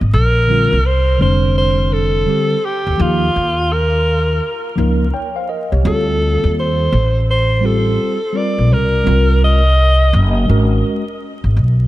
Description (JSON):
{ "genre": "hip hop, jazz-hop", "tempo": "84 BPM", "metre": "4/4", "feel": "swing 64% on 16ths", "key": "Bb major", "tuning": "A4 = 442 Hz", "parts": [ { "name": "upright bass", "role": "bass", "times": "0.0-11.9 s", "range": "F1 to Eb2", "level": "-14 LUFS", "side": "equal", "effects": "none" }, { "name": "mellow alto saxophone", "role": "melody", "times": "0.1-10.5 s", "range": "F4 to Eb5", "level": "-18 LUFS", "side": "equal", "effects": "diffuse ambient delay" }, { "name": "mellow tine electric piano", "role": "accompaniment", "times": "0.5-11.0 s", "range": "D3 to G5", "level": "-20 LUFS", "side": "equal", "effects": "medium stereo tremolo" } ], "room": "light reverb, studio ambience", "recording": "vinyl crackle", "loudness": "-12 LUFS", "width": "side -16 dB against mid", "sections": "0.1-11.6 A section", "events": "none", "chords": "0.1 Bb69; 3.0 Eb9; 5.9 Dm7; 8.7 Cm7; 10.1 Gbadd9" }